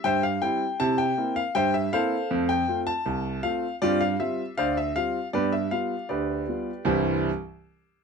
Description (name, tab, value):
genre	ragtime piano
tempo	79 BPM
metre	2/4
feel	straight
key	C major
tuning	A4 = 440 Hz
part	warm concert grand piano	solo	0.0-7.3 s	C2 to A5	-23 LUFS	equal	none
room	light reverb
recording	close, detailed microphones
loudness	-24 LUFS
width	side -5 dB against mid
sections	0.0-6.9 A section; 6.9-8.0 B section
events	none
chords	0.0 C; 0.8 C7; 2.3 F; 3.8 G7sus4; 5.3 G7; 6.9 C